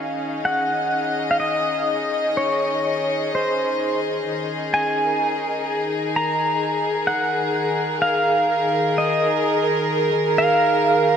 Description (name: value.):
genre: ambient.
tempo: 64 BPM.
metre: 3/4.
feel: straight.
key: unclear.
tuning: A4 = 439 Hz.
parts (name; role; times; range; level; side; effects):
pedal steel guitar; melody; 0.0-11.2 s; C5 to Bb5; -21 LUFS; equal; diffuse ambient delay.
rich chamber string section; sustained chords; 0.0-11.2 s; Eb3 to Eb5; -22 LUFS; left 1 dB; none.
room: wet lush hall reverb, RT60 2.6 s.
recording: none.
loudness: -18 LUFS.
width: side -8 dB against mid.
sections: 0.0-11.2 A section.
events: fade-in on string section 0.0-11.2.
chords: 0.0 Ebm7; 4.2 Absus2/Eb.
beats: 0.44 | 1.38 2.33 3.28 | 4.24 5.20 6.15 | 7.09 8.03 8.97 | 9.91 10.85.